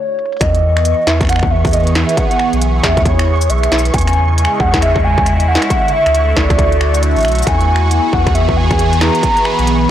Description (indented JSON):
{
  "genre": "IDM",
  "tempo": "136 BPM",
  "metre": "4/4",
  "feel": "swing 62% on 16ths",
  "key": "E major",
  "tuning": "A4 = 436 Hz",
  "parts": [
    { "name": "warbly nostalgic lead", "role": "melody", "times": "0.0-9.9 s", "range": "C#5 to B5", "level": "-16 LUFS", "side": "equal", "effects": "analog chorus, tape echo" },
    { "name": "industrial drum kit", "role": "drums", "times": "0.2-9.8 s", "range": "cabasa, finger snaps, hi-hat, snare drum", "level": "-20 LUFS", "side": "equal", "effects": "overdrive, low-pass filter on hats, studio reverb, soft clipping on snare, low-pass filter on snare, low-pass filter on perc" },
    { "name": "phased analog pad", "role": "sustained chords", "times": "0.4-9.9 s", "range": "C#3 to G#4", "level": "-19 LUFS", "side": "right 2 dB", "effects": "phaser, chorus" },
    { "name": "warm sub bass", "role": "bass", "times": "0.4-9.9 s", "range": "A1 to E2", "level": "-15 LUFS", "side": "equal", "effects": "none" },
    { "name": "electronic kick drum", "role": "drums", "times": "0.4-9.3 s", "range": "none", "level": "-17 LUFS", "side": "equal", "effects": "distortion, overdrive, studio reverb" },
    { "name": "flickering grainy texture", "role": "texture", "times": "0.6-9.9 s", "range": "C#6", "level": "-26 LUFS", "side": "right 2 dB", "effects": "built-in reverb" }
  ],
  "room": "light reverb, digital ambience",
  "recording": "blown-out, overdriven recording, overdrive",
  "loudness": "-11 LUFS",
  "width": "side -11 dB against mid",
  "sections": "0.4-9.9 A section",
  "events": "break 0.0-0.4; drum fill 0.2",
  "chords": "0.4 Emaj7; 3.9 C#m7/E; 5.7 D; 7.5 E"
}